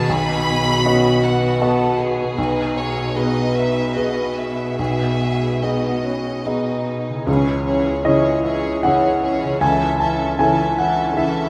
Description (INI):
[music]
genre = cinematic, emotional film score for orchestra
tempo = 71-80 BPM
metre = 3/4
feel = rubato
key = C# minor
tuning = A4 = 440 Hz
[part]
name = rich chamber violin section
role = melody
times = 0.0-6.9 s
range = B4 to B5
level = -28 LUFS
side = equal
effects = none
[part]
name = rich studio violin section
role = second line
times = 0.0-11.5 s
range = B3 to E5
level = -27 LUFS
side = equal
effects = none
[part]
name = clear baby grand piano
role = accompaniment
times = 0.0-11.5 s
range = B1 to A5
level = -22 LUFS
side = equal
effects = none
[part]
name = concert harp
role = arpeggios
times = 0.0-11.5 s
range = B2 to F#5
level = -30 LUFS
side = equal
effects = none
[part]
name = rich studio cello section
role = bass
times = 0.0-11.5 s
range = B2 to C#3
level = -27 LUFS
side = equal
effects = none
[part]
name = warm studio viola section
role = accompaniment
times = 7.3-11.5 s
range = E3 to C#4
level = -27 LUFS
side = equal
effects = none
[sound]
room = wet scoring stage reverb, RT60 2.0 s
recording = none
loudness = -19 LUFS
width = mono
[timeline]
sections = 0.0-7.3 A section; 7.3-11.5 B section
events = none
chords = 0.0 B; 2.4 G#m/B; 7.3 C#m; 9.6 A/C#